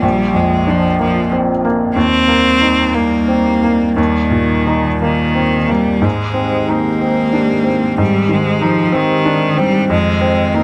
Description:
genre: neoclassical piano and strings.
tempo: 57-63 BPM (dotted quarters).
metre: 6/8.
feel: rubato.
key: Eb major.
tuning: A4 = 440 Hz.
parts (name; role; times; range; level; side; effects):
clear cello; second line; 0.0-10.6 s; Eb3 to C4; -18 LUFS; equal; none.
felt-muted upright piano; accompaniment; 0.0-10.6 s; Bb1 to Eb4; -17 LUFS; equal; none.
dark analog pad; sustained chords; 0.0-10.6 s; Eb3 to D5; -26 LUFS; equal; chorus.
room: light reverb.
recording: close, detailed microphones.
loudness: -14 LUFS.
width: mono.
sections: 0.0-10.6 A section.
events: none.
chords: 0.0 Bb; 2.0 Ebmaj7; 6.0 Abmaj7; 9.9 Fm7.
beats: | 0.03 1.00 | 1.96 2.94 | 3.97 5.01 | 6.04 7.03 | 8.00 8.95 | 9.91.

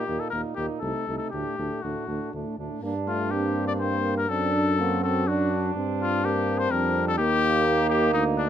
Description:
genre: classical, brass quintet.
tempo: 123 BPM.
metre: 3/4.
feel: rubato.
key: G minor.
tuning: A4 = 440 Hz.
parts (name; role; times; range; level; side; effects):
warm trumpet; melody; 0.0-8.5 s; D4 to D5; -27 LUFS; left 6 dB; none.
warm flugelhorn; second line; 0.0-8.5 s; C4 to F#4; -32 LUFS; right 7 dB; none.
clear trombone; accompaniment; 0.0-8.5 s; A2 to D4; -31 LUFS; right 4 dB; none.
mellow French horn; accompaniment; 0.0-8.5 s; A3 to D4; -32 LUFS; left 2 dB; none.
mellow bass trombone; bass; 0.1-8.5 s; C2 to G2; -29 LUFS; right 1 dB; none.
room: light reverb.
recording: close, detailed microphones.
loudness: -23 LUFS.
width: side -10 dB against mid.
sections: 0.0-2.8 A section; 2.8-8.5 B section.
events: none.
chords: 0.0 Eb5; 0.8 Adim/C; 1.3 D; 2.8 Gm; 4.3 D7/F#; 5.8 Gm; 7.2 Eb.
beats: 0.32 0.82 | 1.32 1.83 2.33 | 2.83 3.31 3.80 | 4.30 4.79 5.28 | 5.76 6.24 6.71 | 7.19 7.66 8.14.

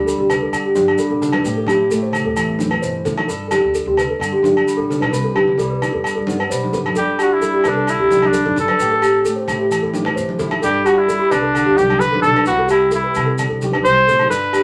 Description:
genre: highlife guitar band.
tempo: 131 BPM.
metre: 4/4.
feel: straight.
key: G major.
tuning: A4 = 441 Hz.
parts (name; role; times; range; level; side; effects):
fingerpicked plugged-in steel-string acoustic guitar; accompaniment; 0.0-14.6 s; G2 to B4; -25 LUFS; equal; none.
celesta; arpeggios; 0.0-14.6 s; G4 to C5; -21 LUFS; equal; none.
upright bass; bass; 0.0-14.6 s; G1 to C3; -30 LUFS; equal; none.
maracas; percussion; 0.1-14.6 s; none; -36 LUFS; equal; none.
agogo bells; percussion; 0.3-14.6 s; none; -27 LUFS; equal; none.
congas; percussion; 0.3-14.3 s; none; -28 LUFS; equal; none.
warm trumpet; melody; 7.0-14.6 s; D4 to C5; -19 LUFS; equal; none.
room: moderate studio reverb, RT60 0.6 s.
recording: none.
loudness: -17 LUFS.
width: mono.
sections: 0.0-7.0 A section; 7.0-14.6 B section.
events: none.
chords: 0.0 Gsus2; 1.5 Am7; 3.3 Gsus2; 5.1 Cmaj7; 7.0 Gsus2; 8.8 Am7; 10.6 Gsus2; 12.5 Cmaj7.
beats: 0.08 0.54 0.99 | 1.45 1.91 2.37 2.83 | 3.29 3.75 4.20 4.66 | 5.12 5.58 6.04 6.50 | 6.96 7.42 7.88 8.34 | 8.80 9.26 9.71 10.17 | 10.63 11.09 11.55 12.01 | 12.47 12.93 13.38 13.84 | 14.30.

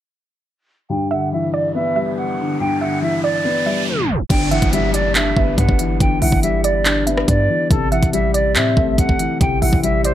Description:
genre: hip hop, trap.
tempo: 141 BPM.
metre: 4/4.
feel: half-time.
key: G major.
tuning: A4 = 442 Hz.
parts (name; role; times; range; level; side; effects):
silver concert flute; melody; 0.9-10.1 s; A4 to G5; -21 LUFS; right 1 dB; low-pass filter, digital delay.
dark concert grand piano; accompaniment; 0.9-10.1 s; G2 to D4; -20 LUFS; left 3 dB; low-pass filter.
riser and downlifter; sound effects; 1.6-7.7 s; none; -29 LUFS; right 1 dB; none.
soft round pluck; second line; 1.1-10.1 s; D5 to E5; -26 LUFS; right 5 dB; chorus, digital delay.
hard-hitting 808-style bass; bass; 4.3-10.1 s; G1 to A2; -20 LUFS; equal; none.
trap drum kit; drums; 4.3-10.1 s; crash cymbal, handclaps, hi-hat, kick drum, rim click; -18 LUFS; equal; overdrive.
room: light reverb, digital ambience.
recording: tape stop.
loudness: -15 LUFS.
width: side -12 dB against mid.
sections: 0.9-4.3 A section; 4.3-10.1 B section.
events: filter sweep 0.9-4.3; riser 1.6-4.3; tape stop 3.9-4.3.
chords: 0.9 G6; 7.7 Am7.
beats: | 0.90 1.32 1.75 2.17 | 2.60 3.03 3.45 3.88 | 4.30 4.73 5.15 5.58 | 6.00 6.43 6.86 7.28 | 7.71 8.13 8.56 8.98 | 9.41 9.83.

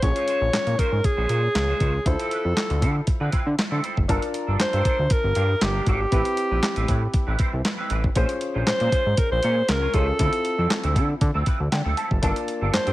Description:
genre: early-eighties boogie funk.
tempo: 118 BPM.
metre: 4/4.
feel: straight.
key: G dorian.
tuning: A4 = 439 Hz.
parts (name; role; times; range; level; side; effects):
breathy alto saxophone; melody; 0.0-12.9 s; G4 to Db5; -24 LUFS; equal; slapback echo.
warm baby grand piano; accompaniment; 0.0-12.9 s; Bb3 to A5; -31 LUFS; left 2 dB; none.
clean electric guitar; riff; 0.0-12.9 s; F3 to Db5; -32 LUFS; right 4 dB; ensemble chorus.
fat analog bass; bass; 0.0-12.9 s; F#1 to D3; -24 LUFS; equal; none.
clean 12-bit digital drum machine; drums; 0.0-12.9 s; handclaps, hi-hat, kick drum, snare drum; -24 LUFS; equal; none.
room: digital ambience.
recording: none.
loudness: -20 LUFS.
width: side -16 dB against mid.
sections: 0.0-4.1 A section; 4.1-12.9 B section.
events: grand piano fill 11.5-12.2.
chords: 0.0 Bbm9; 2.1 Dm9; 4.1 Gm9; 6.1 Am9; 8.2 Bbm9; 10.2 Dm9; 12.2 Gm9.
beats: | 0.02 0.53 1.04 1.55 | 2.06 2.57 3.07 3.58 | 4.09 4.60 5.11 5.62 | 6.12 6.63 7.14 7.65 | 8.16 8.67 9.18 9.68 | 10.19 10.70 11.21 11.72 | 12.23 12.73.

